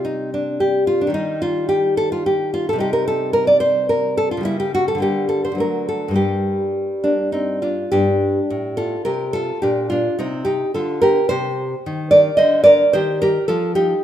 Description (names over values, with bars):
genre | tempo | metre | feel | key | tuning
classical, baroque-style dance for nylon-string guitar | 108 BPM | 3/4 | rubato | G minor | A4 = 440 Hz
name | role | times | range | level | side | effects
nylon-string guitar | solo | 0.0-14.0 s | G2 to Eb5 | -16 LUFS | equal | none
room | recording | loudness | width
moderate recital hall reverb, RT60 1.5 s | minimal, uncompressed stereo recording | -16 LUFS | side -10 dB against mid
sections
0.0-7.9 A section; 7.9-14.0 B section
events
none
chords
0.0 Cm; 1.1 Eb; 2.8 Cm13; 4.5 C#dim7; 5.0 Gm/D; 5.6 D; 6.2 Gm; 7.9 G5; 9.6 Gm/Bb; 11.3 Cm; 12.9 Eb69